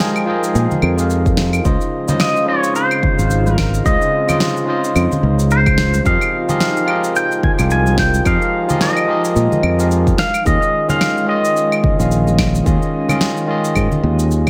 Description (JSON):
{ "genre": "sunset chillout", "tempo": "109 BPM", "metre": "4/4", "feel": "swing 58% on 16ths", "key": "F minor", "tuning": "A4 = 440 Hz", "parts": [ { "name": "pedal steel guitar", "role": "melody", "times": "0.0-14.3 s", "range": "Ab4 to Ab5", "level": "-22 LUFS", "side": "equal", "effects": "delay" }, { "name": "overdriven tine electric piano", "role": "accompaniment", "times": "0.0-14.5 s", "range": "Db3 to G5", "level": "-22 LUFS", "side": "equal", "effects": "delay" }, { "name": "ethereal airy pad", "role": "sustained chords", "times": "0.0-14.5 s", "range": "Db3 to G5", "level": "-27 LUFS", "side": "equal", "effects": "ensemble chorus, built-in reverb" }, { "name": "electronic snare drum, shaker and claves", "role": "drums", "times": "0.0-14.5 s", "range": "none", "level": "-24 LUFS", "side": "equal", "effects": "none" }, { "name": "fingered electric bass", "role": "bass", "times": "0.6-14.5 s", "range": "Ab1 to Bb2", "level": "-18 LUFS", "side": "equal", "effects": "none" }, { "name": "congas", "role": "percussion", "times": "0.7-14.0 s", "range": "none", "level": "-26 LUFS", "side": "equal", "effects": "none" }, { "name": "electronic kick drum", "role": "drums", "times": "1.3-14.5 s", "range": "none", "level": "-21 LUFS", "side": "equal", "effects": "none" } ], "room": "moderate digital room reverb, RT60 1.1 s", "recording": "none", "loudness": "-16 LUFS", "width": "mono", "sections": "0.0-14.5 A section", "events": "none", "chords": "0.0 Fm11; 1.7 Dbmaj9; 6.1 Fm11; 10.2 Eb7sus4", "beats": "0.00 0.55 1.10 | 1.65 2.20 2.75 3.30 | 3.85 4.40 4.96 5.50 | 6.06 6.61 7.16 7.71 | 8.26 8.81 9.36 9.91 | 10.46 11.01 11.56 12.11 | 12.66 13.21 13.76 14.31" }